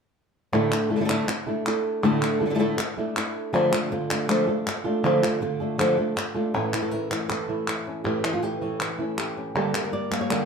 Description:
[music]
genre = flamenco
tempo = 160 BPM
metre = 4/4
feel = straight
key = A phrygian dominant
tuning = A4 = 440 Hz
[part]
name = flamenco guitar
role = melody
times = 0.5-10.5 s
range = A2 to D5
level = -24 LUFS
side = equal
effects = none
[part]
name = flamenco guitar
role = stabs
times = 0.5-10.5 s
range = G2 to G4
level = -29 LUFS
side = right 3 dB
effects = none
[part]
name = palmas hand claps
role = percussion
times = 0.5-10.5 s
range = none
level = -29 LUFS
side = left 1 dB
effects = none
[sound]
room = wet studio reverb, RT60 0.8 s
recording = heard from further back in the room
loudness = -22 LUFS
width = side -6 dB against mid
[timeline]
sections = 0.5-6.5 A section; 6.5-10.5 B section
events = none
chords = 0.5 Asus4; 3.5 Dm; 6.5 A; 9.6 Gm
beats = | 0.53 0.91 1.28 1.66 | 2.03 2.41 2.79 3.16 | 3.54 3.91 4.29 4.66 | 5.04 5.42 5.79 6.17 | 6.54 6.92 7.30 7.67 | 8.05 8.43 8.80 9.18 | 9.55 9.93 10.31

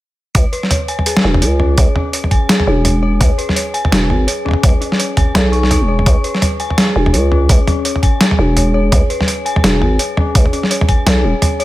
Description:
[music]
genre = half-time drum and bass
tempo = 168 BPM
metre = 4/4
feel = swing 58% on 16ths, half-time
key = C# minor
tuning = A4 = 440 Hz
[part]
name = dark detuned synth bell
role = arpeggios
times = 0.3-11.6 s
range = C#4 to C#6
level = -20 LUFS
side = left 2 dB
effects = chorus, digital delay
[part]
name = growling 808-style bass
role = bass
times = 0.3-11.3 s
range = D#1 to C#2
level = -13 LUFS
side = equal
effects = none
[part]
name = boom bap sampler-style drum kit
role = drums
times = 0.3-11.6 s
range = hi-hat, snare drum, toms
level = -15 LUFS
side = equal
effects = overdrive
[part]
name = electronic kick drum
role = drums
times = 0.3-11.0 s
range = none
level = -12 LUFS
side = equal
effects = overdrive
[sound]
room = light reverb, digital ambience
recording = none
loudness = -11 LUFS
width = side -16 dB against mid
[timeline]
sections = 0.4-11.6 A section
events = none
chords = 0.4 C#5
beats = | 0.35 0.71 1.06 1.42 | 1.78 2.14 2.49 2.85 | 3.21 3.56 3.92 4.28 | 4.64 4.99 5.35 5.71 | 6.07 6.42 6.78 7.14 | 7.49 7.85 8.21 8.56 | 8.92 9.28 9.64 9.99 | 10.35 10.71 11.06 11.42

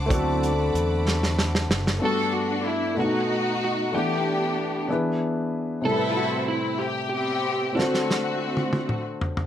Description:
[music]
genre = slow gospel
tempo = 63 BPM (dotted quarters)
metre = 6/8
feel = straight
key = unclear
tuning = A4 = 440 Hz
[part]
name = warm upright piano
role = accompaniment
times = 0.0-9.5 s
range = G2 to F#5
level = -26 LUFS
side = left 2 dB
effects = plate reverb
[part]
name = warm studio string section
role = sustained chords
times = 0.0-2.0 s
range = F#5 to D6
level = -36 LUFS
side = equal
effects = plate reverb
[part]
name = fingered electric bass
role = bass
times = 0.0-2.0 s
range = F#1 to E2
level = -26 LUFS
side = right 1 dB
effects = none
[part]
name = tonewheel organ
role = sustained chords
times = 0.1-0.5 s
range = F#3 to E4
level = -33 LUFS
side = right 6 dB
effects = slow rotary speaker, chorus vibrato, plate reverb
[part]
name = warm soul drum kit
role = drums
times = 0.1-2.0, 7.8-9.5 s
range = hi-hat, kick drum, snare drum, toms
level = -25 LUFS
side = right 1 dB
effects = none
[part]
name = rich studio string section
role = melody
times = 2.0-9.1 s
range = A3 to A4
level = -26 LUFS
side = left 1 dB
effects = plate reverb
[part]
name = electric slide guitar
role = melody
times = 2.1-9.0 s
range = E4 to A4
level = -30 LUFS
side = right 3 dB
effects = plate reverb
[sound]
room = moderate studio reverb, RT60 0.8 s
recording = none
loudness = -22 LUFS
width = side -10 dB against mid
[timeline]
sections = 0.0-2.0 A section; 2.0-9.5 B section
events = drum fill 1.1-2.0, 7.8-9.5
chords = 0.0 D7; 2.0 Gmaj9; 3.0 B7; 3.9 Em11; 4.9 E7; 5.8 Am9; 7.8 D7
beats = | 0.10 1.06 | 2.01 2.97 | 3.93 4.89 | 5.85 6.80 | 7.76 8.72

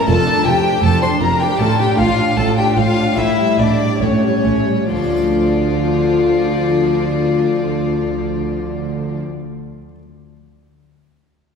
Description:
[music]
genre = classical, baroque-style concerto movement with solo episodes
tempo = 68-82 BPM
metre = 4/4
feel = straight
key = D minor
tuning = A4 = 440 Hz
[part]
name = warm chamber violin section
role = melody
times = 0.0-9.2 s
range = C#5 to C6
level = -25 LUFS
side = left 6 dB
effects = none
[part]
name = warm violin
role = melody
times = 0.0-9.2 s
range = F4 to C6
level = -20 LUFS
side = left 4 dB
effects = none
[part]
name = rich chamber violin section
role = second line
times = 0.0-9.2 s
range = C#4 to C5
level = -22 LUFS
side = left 2 dB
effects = none
[part]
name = harpsichord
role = accompaniment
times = 0.0-10.0 s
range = F2 to D5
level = -23 LUFS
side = left 1 dB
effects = none
[part]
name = warm studio viola section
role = accompaniment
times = 0.0-9.2 s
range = F3 to F4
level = -21 LUFS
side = left 1 dB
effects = none
[part]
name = dark chamber cello section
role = bass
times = 0.1-9.2 s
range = F2 to D3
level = -23 LUFS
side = right 3 dB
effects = none
[part]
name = warm chamber double bass section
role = bass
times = 0.1-9.2 s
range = F1 to D2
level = -21 LUFS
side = right 3 dB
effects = none
[sound]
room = wet concert hall reverb, RT60 2.4 s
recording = heard from further back in the room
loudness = -14 LUFS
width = side -6 dB against mid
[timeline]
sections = 0.0-4.9 A section; 4.9-8.4 B section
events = slowing down 0.0-4.9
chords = 0.1 Dm/F; 1.6 Dm/A; 3.2 A7; 4.9 Dm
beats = 0.08 0.83 | 1.59 2.37 3.17 4.01 | 4.89 5.78 6.66 7.54

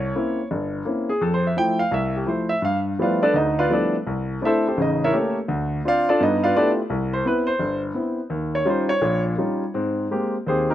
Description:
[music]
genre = solo jazz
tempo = 169 BPM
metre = 4/4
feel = swing 64% on 8ths, rubato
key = C major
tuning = A4 = 440 Hz
[part]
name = warm grand piano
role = solo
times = 0.0-10.7 s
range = G1 to G5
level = -20 LUFS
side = equal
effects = none
[sound]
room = little or no reverb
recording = recorded outdoors, with no room sound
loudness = -20 LUFS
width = side -12 dB against mid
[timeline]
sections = 0.0-9.7 A section; 9.7-10.7 A section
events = grand piano solo 0.0-9.7, 9.7-10.7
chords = 0.0 C7b9; 1.2 Fmaj7; 2.6 G13; 4.1 C69; 4.8 A7b9; 5.5 Dm7; 6.2 G13; 6.9 Cmaj7; 8.3 Eb9; 9.7 Abmaj9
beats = 0.15 0.51 0.86 | 1.21 1.56 1.92 2.27 | 2.62 2.98 3.34 3.70 | 4.06 4.41 4.77 5.13 | 5.48 5.84 6.19 6.55 | 6.90 7.25 7.60 7.95 | 8.30 8.66 9.02 9.38 | 9.74 10.10 10.46

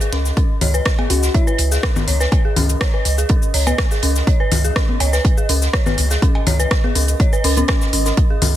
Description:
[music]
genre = minimal techno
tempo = 123 BPM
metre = 4/4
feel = straight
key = unclear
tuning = A4 = 441 Hz
[part]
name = dark detuned synth bell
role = riff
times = 0.0-8.5 s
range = C#4 to C#5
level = -23 LUFS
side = left 1 dB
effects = chorus, sidechain pumping, tape echo
[part]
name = compact cocktail drum kit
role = drums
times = 0.0-8.5 s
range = hi-hat, snare drum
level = -28 LUFS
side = right 3 dB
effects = sidechain pumping on hats, high-pass filter on hats, soft clipping on snare, high-pass filter on snare, high-pass filter on room
[part]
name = minimal click drum kit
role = drums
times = 0.0-8.5 s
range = cabasa, hi-hat, rim click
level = -23 LUFS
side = left 1 dB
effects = soft clipping on snare
[part]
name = swarming drone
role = texture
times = 0.0-8.6 s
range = D#5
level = -29 LUFS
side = right 6 dB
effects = built-in reverb, sidechain pumping
[part]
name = punchy sub bass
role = bass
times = 0.1-8.6 s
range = G#1 to C#2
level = -18 LUFS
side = equal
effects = tube saturation, sidechain pumping
[part]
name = electronic kick drum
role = drums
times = 0.4-8.3 s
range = none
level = -17 LUFS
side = equal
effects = none
[part]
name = congas and cowbell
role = percussion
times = 0.6-8.5 s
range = none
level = -24 LUFS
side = left 4 dB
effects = none
[part]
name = soft struck synth lead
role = melody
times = 1.1-1.8 s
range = E4 to F#4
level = -25 LUFS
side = left 5 dB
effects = chorus, tape echo
[sound]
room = little or no reverb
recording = dense, heavily limited modern master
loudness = -14 LUFS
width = side -12 dB against mid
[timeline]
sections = 0.0-8.6 A section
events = none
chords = none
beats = | 0.37 0.86 1.34 1.83 | 2.32 2.81 3.30 3.78 | 4.27 4.76 5.25 5.74 | 6.22 6.71 7.20 7.69 | 8.17

